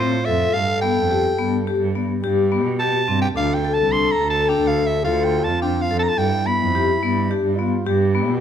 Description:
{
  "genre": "contemporary instrumental, chamber music in an uneven meter",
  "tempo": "107 BPM",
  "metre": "5/4",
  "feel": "straight",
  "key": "unclear",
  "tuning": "A4 = 439 Hz",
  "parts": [
    { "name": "growling soprano saxophone", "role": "melody", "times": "0.0-7.3 s", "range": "C5 to C6", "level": "-22 LUFS", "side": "right 2 dB", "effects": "none" },
    { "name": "clear French horn", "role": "second line", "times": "0.0-8.4 s", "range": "D4 to A4", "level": "-24 LUFS", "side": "left 4 dB", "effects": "none" },
    { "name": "vibraphone with medium hard mallets", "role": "arpeggios", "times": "0.0-8.3 s", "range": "B3 to A4", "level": "-22 LUFS", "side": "left 6 dB", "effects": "none" },
    { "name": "rich cello", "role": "bass", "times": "0.0-8.4 s", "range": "C2 to B2", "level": "-23 LUFS", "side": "right 5 dB", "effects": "none" }
  ],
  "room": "moderate recital hall reverb, RT60 1.8 s",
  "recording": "minimal, uncompressed stereo recording",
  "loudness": "-17 LUFS",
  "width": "side -9 dB against mid",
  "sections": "0.0-8.4 A section",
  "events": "none",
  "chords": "0.0 F; 0.5 G7; 3.4 Dm; 6.2 G7",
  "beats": "| 0.55 1.11 1.67 2.24 2.80 | 3.36 3.93 4.49 5.05 5.62 | 6.18 6.74 7.30 7.87"
}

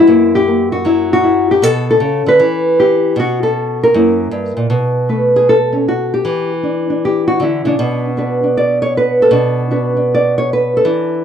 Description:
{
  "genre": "solo jazz",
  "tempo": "156 BPM",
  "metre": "4/4",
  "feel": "swing 67% on 8ths",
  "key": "B minor",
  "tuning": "A4 = 439 Hz",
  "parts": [
    { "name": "nylon-string guitar", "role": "solo", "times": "0.0-11.2 s", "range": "F#2 to D5", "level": "-11 LUFS", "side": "equal", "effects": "none" }
  ],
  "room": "small room reverb",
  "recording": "dry, close 1970s-style studio recording",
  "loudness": "-11 LUFS",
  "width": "side -8 dB against mid",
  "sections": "0.0-4.7 A section; 4.7-11.2 B section",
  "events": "nylon-string guitar solo 4.7-11.2",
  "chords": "0.1 F#7b9; 1.6 Bm7; 2.4 N.C.; 3.9 F#7b9; 4.7 Asus2/B; 6.2 Em7; 7.8 Bm7",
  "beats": "| 0.07 0.46 0.84 1.23 | 1.61 2.00 2.38 2.77 | 3.15 3.54 3.92 4.31 | 4.70 5.08 5.46 5.85 | 6.24 6.62 7.01 7.39 | 7.78 8.16 8.55 8.94 | 9.32 9.71 10.09 10.48 | 10.86"
}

